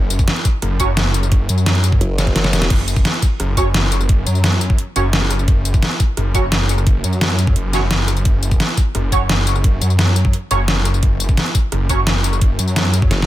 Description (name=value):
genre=dark technical drum and bass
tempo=173 BPM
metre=4/4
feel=straight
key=unclear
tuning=A4 = 440 Hz
part: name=snarling distorted saw bass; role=bass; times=0.0-13.1 s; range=F#1 to F#2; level=-17 LUFS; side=equal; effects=distortion, overdrive, sidechain pumping
part: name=dubstep drum kit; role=drums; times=0.1-13.3 s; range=crash cymbal, hi-hat, rim click, snare drum, tambourine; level=-19 LUFS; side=equal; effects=none
part: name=electronic kick drum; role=drums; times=0.2-13.1 s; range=none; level=-15 LUFS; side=equal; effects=none
part: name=band-passed chord stab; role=stabs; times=0.8-0.9, 3.6-12.0 s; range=F#3 to C#5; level=-24 LUFS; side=right 3 dB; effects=ensemble chorus, vintage 12-bit sampler grit, ping-pong delay
part: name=formant-sweep wobble bass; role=bass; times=2.0-2.7, 13.1-13.3 s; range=F#1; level=-18 LUFS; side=equal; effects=chorus, tube saturation
room=digital ambience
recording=none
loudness=-14 LUFS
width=side -14 dB against mid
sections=0.0-13.3 A section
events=drum fill 2.2-2.7, 13.1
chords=0.0 F#5